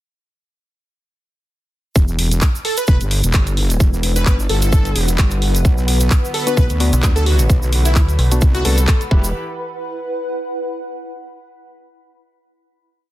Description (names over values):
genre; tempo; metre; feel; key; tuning
bass house; 130 BPM; 4/4; swing 55% on 16ths; E minor; A4 = 440 Hz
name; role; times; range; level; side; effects
wobble bass; bass; 2.0-9.3 s; E1 to D2; -16 LUFS; equal; chorus, overdrive, sidechain pumping
electronic kick drum; drums; 2.0-9.2 s; none; -14 LUFS; equal; small room reverb
tube shaker; percussion; 2.0-9.3 s; none; -28 LUFS; right 3 dB; none
granular cloud pad; texture; 3.1-11.1 s; E4 to B5; -28 LUFS; equal; built-in reverb, sidechain pumping
garage drum kit; drums; 2.2-9.1 s; handclaps, hi-hat; -23 LUFS; equal; small room reverb
plucky unison lead; melody; 2.6-9.0 s; E4 to B4; -25 LUFS; equal; lush chorus, dub echo
warm studio string section; sustained chords; 5.6-9.3 s; D3 to B4; -28 LUFS; right 1 dB; sidechain pumping
percussive organ stab; stabs; 6.5-9.3 s; B3 to B4; -25 LUFS; left 2 dB; chorus, sidechain pumping, dub echo
metallic FM bass; bass; 6.9-8.4 s; B1 to D2; -15 LUFS; equal; tube saturation, sidechain pumping
room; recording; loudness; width
digital ambience; dense, heavily limited modern master; -14 LUFS; side -15 dB against mid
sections
2.0-9.3 drop; 9.3-11.2 final note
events
drop 2.0-9.3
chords
2.0 Em; 5.6 Bm; 9.1 Em; 9.3 E5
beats
| 1.96 2.42 2.88 3.34 | 3.80 4.26 4.72 5.19 | 5.65 6.11 6.57 7.03 | 7.49 7.96 8.42 8.88 | 9.34 9.80 10.26 10.72